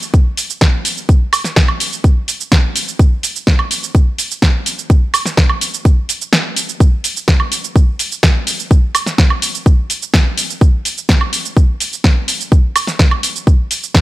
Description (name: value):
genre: EDM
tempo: 126 BPM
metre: 4/4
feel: straight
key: none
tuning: none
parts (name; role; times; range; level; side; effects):
- house drum kit; drums; 0.0-14.0 s; hi-hat, shaker, snare drum, woodblock; -15 LUFS; right 1 dB; small room ambience
- electronic kick drum; drums; 0.1-14.0 s; none; -10 LUFS; equal; small room ambience
room: little or no reverb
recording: none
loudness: -12 LUFS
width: side -16 dB against mid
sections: 0.0-14.0 A section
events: kick drops out 6.3-6.8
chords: none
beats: 0.14 0.61 | 1.09 1.56 2.04 2.52 | 2.99 3.47 3.95 4.42 | 4.90 5.38 5.85 6.33 | 6.80 7.28 7.76 8.23 | 8.71 9.18 9.66 10.14 | 10.61 11.09 11.56 12.04 | 12.52 12.99 13.47 13.95